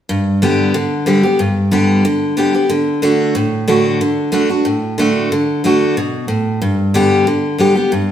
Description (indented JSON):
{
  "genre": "bluegrass",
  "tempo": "184 BPM",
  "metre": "4/4",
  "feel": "straight",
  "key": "G major",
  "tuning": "A4 = 440 Hz",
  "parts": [
    { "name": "picked steel-string acoustic guitar", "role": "solo", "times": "0.1-8.1 s", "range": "G2 to G4", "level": "-12 LUFS", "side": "equal", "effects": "none" }
  ],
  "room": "wet stone room reverb, RT60 1.2 s",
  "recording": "band playing live in one room",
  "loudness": "-12 LUFS",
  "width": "side -10 dB against mid",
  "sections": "0.1-8.1 A section",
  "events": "none",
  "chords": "0.1 G; 2.7 D; 6.6 G"
}